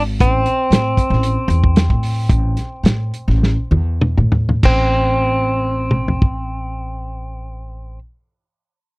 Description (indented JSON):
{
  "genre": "straight-eighth soul blues",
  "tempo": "94-118 BPM",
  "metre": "4/4",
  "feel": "swing 54% on 16ths",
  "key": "A minor",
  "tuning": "A4 = 440 Hz",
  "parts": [
    { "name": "direct-recorded clean electric guitar", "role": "melody", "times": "0.0-8.0 s", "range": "C4", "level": "-20 LUFS", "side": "equal", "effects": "vibrato effect" },
    { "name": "upright bass", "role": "bass", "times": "0.0-8.0 s", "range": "G#1 to A2", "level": "-18 LUFS", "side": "equal", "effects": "none" },
    { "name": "warm soul drum kit", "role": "drums", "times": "0.2-6.4 s", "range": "crash cymbal, hi-hat, kick drum, snare drum, toms", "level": "-16 LUFS", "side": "equal", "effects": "none" }
  ],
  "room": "little or no reverb",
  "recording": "dry, close 1970s-style studio recording",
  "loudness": "-14 LUFS",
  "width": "side -26 dB against mid",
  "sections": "0.0-4.6 A section; 4.6-9.0 B section",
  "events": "slowing down 0.2-4.6; drum fill 3.4-4.6",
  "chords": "0.2 Am"
}